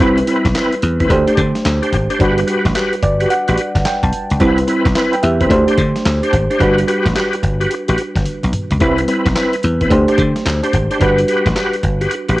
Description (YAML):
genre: R&B, new jack swing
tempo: 109 BPM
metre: 4/4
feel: swing 64% on 16ths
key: G major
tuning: A4 = 441 Hz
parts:
  - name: FM electric piano with auto-pan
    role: accompaniment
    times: 0.0-12.4 s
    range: G3 to A5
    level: -18 LUFS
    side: right 1 dB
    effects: cassette tape
  - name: bright tonewheel organ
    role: stabs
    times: 0.0-12.4 s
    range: C4 to C5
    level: -18 LUFS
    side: equal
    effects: chorus vibrato, fast rotary speaker, cassette tape
  - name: dry thumbed slap bass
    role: bass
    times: 0.0-12.4 s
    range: G1 to D3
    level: -16 LUFS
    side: equal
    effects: none
  - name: dusty soul sampler-style drum kit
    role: drums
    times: 0.0-12.4 s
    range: handclaps, hi-hat, kick drum, snare drum, toms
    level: -21 LUFS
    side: equal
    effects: cassette tape
room: moderate studio reverb, RT60 0.6 s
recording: home recording on cassette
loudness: -13 LUFS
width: side -17 dB against mid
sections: 0.0-12.4 A section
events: FM electric piano fill 2.8-4.4; drum fill 8.3-8.8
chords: 0.0 Cmaj7; 1.1 D7sus4; 2.2 Gmaj7; 4.4 Cmaj7; 5.5 D7sus4; 6.6 Gmaj7; 8.8 Cmaj7; 9.9 D7sus4; 11.0 Gmaj7